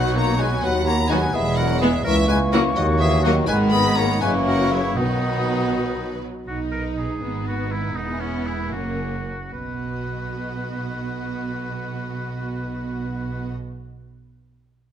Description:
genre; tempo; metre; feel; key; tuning
quick classical-period movement for symphony orchestra; 72-85 BPM (dotted quarters); 6/8; rubato; B major; A4 = 440 Hz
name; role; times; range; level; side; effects
rich chamber violin section; melody; 0.0-13.5 s; G#4 to B5; -29 LUFS; left 3 dB; none
concert flute; second line; 0.0-6.1 s; B5 to D#6; -29 LUFS; left 2 dB; none
rich chamber violin section; second line; 0.0-13.5 s; A#3 to F#4; -32 LUFS; left 3 dB; none
warm clarinet; second line; 0.0-6.2 s; A#3 to D#4; -29 LUFS; left 2 dB; none
warm oboe; second line; 0.0-13.5 s; C#4 to D#5; -31 LUFS; equal; none
mellow bassoon; accompaniment; 0.0-6.2 s; D#3 to G#3; -29 LUFS; right 4 dB; none
rich chamber viola section; accompaniment; 0.0-13.5 s; D#3 to D#4; -29 LUFS; right 1 dB; none
warm French horn section; sustained chords; 0.0-6.2 s; B2 to B3; -27 LUFS; left 4 dB; none
warm chamber cello section; bass; 0.0-13.5 s; C#2 to D#4; -28 LUFS; right 2 dB; none
warm chamber double bass section; bass; 0.0-13.5 s; E1 to D#2; -27 LUFS; right 2 dB; none
room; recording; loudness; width
moderate recital hall reverb, RT60 1.6 s; none; -20 LUFS; side -9 dB against mid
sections
0.0-6.5 A section; 6.5-9.5 B section; 9.5-12.7 C section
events
slowing down 5.7-9.5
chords
0.0 B; 0.6 B/D#; 1.3 E; 2.1 A#dim/C#; 2.8 D#m; 3.5 G#m; 4.2 F#7; 5.0 B; 7.2 G#m; 8.0 Emaj7; 8.7 F#; 9.5 B

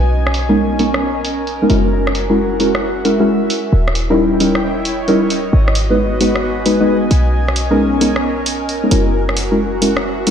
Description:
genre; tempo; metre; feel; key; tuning
UK garage, two-step garage; 133 BPM; 4/4; swing 66% on 16ths; unclear; A4 = 440 Hz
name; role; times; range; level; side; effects
short 808-style bass; bass; 0.0-10.3 s; D#1 to B1; -18 LUFS; equal; none
airy breathy pad; texture; 0.0-10.3 s; C#4 to G#5; -21 LUFS; equal; chorus
punchy analog drum machine; drums; 0.3-10.3 s; hi-hat, rim click; -22 LUFS; equal; low-pass filter on hats, low-pass filter on snare, low-pass filter on room
deep mellow chord stab; stabs; 0.5-10.3 s; G3 to B4; -15 LUFS; equal; chorus, ping-pong delay
room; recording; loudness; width
wet lush hall reverb, RT60 1.8 s; dreamy mix soaked in reverb; -13 LUFS; side -8 dB against mid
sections
0.0-10.3 A section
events
none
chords
0.0 Bmaj13; 1.7 F#9; 3.7 D#7b9; 5.5 G#m7; 7.1 Bmaj13; 8.9 F#9

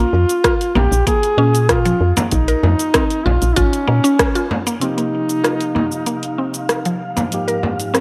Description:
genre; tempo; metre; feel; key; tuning
organic downtempo; 96 BPM; 4/4; straight; Bb dorian; A4 = 444 Hz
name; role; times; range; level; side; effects
mellow duduk; melody; 0.0-7.0 s; Db4 to Ab4; -22 LUFS; equal; digital delay
mallet-like synth pluck; arpeggios; 0.0-8.0 s; F3 to Bb4; -24 LUFS; equal; chorus, tape echo
woody FM bass; bass; 0.0-4.0 s; Ab1 to Bb2; -18 LUFS; equal; none
deep house drum kit; drums; 0.3-8.0 s; cabasa, hi-hat, rim click; -22 LUFS; equal; overdrive
electronic kick drum; drums; 0.4-4.3 s; none; -23 LUFS; equal; overdrive
frame drum; percussion; 0.8-7.8 s; none; -25 LUFS; equal; none
tine electric piano; accompaniment; 4.8-8.0 s; Ab2 to G4; -28 LUFS; equal; sidechain pumping, low-pass filter, tape echo
wind-like tuned noise texture; texture; 5.3-8.0 s; F5; -32 LUFS; equal; built-in reverb
room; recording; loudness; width
light reverb, digital ambience; none; -17 LUFS; mono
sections
0.0-4.8 A section; 4.8-8.0 B section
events
band accent 4.2-4.5; filter sweep on tine electric piano 4.8-8.0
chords
0.0 Bb5; 4.8 Cm7; 7.3 Abmaj7sus2

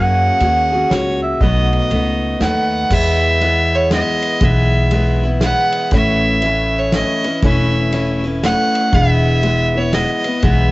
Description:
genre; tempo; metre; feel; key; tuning
honky-tonk and classic country; 120 BPM; 3/4; swing 63% on 8ths; E major; A4 = 440 Hz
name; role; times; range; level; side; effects
mellow harmonica; second line; 0.0-2.4 s; C#5 to F#5; -17 LUFS; right 2 dB; none
picked steel-string acoustic guitar; accompaniment; 0.0-10.7 s; B2 to B4; -19 LUFS; left 2 dB; none
upright bass; bass; 0.0-10.7 s; E1 to F#2; -18 LUFS; equal; none
natural country drum kit; drums; 0.4-10.6 s; crash cymbal, kick drum, ride cymbal, snare drum; -22 LUFS; equal; cassette tape
clear fiddle; melody; 2.4-10.7 s; C#5 to F#5; -18 LUFS; right 1 dB; cassette tape, tape echo
room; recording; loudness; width
moderate booth ambience, RT60 0.2 s; home recording on cassette, nothing above 7.9 kHz; -13 LUFS; side -20 dB against mid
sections
0.0-2.9 A section; 2.9-10.7 B section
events
harmonica solo 0.0-2.9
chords
0.0 F#add9; 1.4 B7; 2.9 E; 5.9 Aadd9; 8.9 E

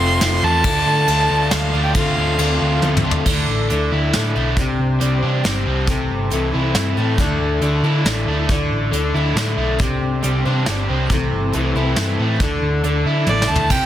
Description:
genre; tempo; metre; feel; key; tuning
folk rock and heartland rock; 138 BPM; 3/4; straight; D minor; A4 = 440 Hz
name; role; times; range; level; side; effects
dark fiddle; melody; 0.0-2.8, 13.3-13.9 s; D5 to C6; -20 LUFS; right 2 dB; none
picked steel-string acoustic guitar; accompaniment; 0.0-13.9 s; C3 to C5; -25 LUFS; left 5 dB; none
warm studio string section; sustained chords; 0.0-13.9 s; A3 to D5; -32 LUFS; equal; none
crunchy overdriven guitar; riff; 0.0-13.9 s; C3 to F4; -22 LUFS; right 1 dB; none
hollow-body short-scale picked electric bass; bass; 0.0-13.9 s; F1 to D3; -20 LUFS; equal; none
soft brush drum kit; drums; 0.2-13.8 s; crash cymbal, hi-hat, kick drum, ride cymbal, snare drum, toms; -22 LUFS; equal; soft clipping on snare
room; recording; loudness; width
light reverb; dense, heavily limited modern master; -16 LUFS; side -12 dB against mid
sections
0.0-3.3 A section; 3.3-13.7 B section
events
drum fill 2.8-3.3, 13.3-13.7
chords
0.0 F; 0.6 Dm; 2.0 Dm7; 3.3 Dsus2; 4.6 Csus2; 5.9 Am; 7.2 Dsus2; 9.8 Csus2; 11.1 Am; 12.4 Dsus2

